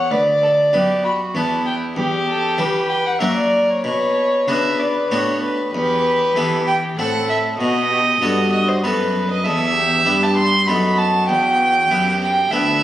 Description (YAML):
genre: classical, baroque-style sonata movement with continuo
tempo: 97 BPM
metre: 3/4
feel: straight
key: B minor, E minor from 5.7 s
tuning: A4 = 440 Hz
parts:
  - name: dark violin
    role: melody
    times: 0.0-12.8 s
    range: F#4 to B5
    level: -21 LUFS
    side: left 1 dB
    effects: none
  - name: warm violin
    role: second line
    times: 0.0-12.8 s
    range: E4 to C6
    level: -19 LUFS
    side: right 2 dB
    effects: none
  - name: harpsichord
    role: accompaniment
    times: 0.0-12.8 s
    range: D2 to B4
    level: -22 LUFS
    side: left 1 dB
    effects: none
  - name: dark cello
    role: bass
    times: 0.0-12.8 s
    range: D2 to E3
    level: -25 LUFS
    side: equal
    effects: none
room: wet recital hall reverb, RT60 1.7 s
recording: recorded on a phone in the room, studio reverb, compression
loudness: -15 LUFS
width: side -13 dB against mid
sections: 0.0-5.7 A section; 5.7-12.8 A section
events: none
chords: 0.1 Bm/D; 1.3 E5; 2.0 C#dim/E; 3.2 F#; 3.8 Bm; 5.7 Em; 7.0 Am; 7.6 B7; 9.4 Em; 10.7 B7/F#; 11.3 Em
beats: | 0.11 0.73 1.35 | 1.97 2.58 3.21 | 3.84 4.48 5.11 | 5.74 6.36 6.98 | 7.60 8.21 8.83 | 9.45 10.06 10.68 | 11.29 11.90 12.51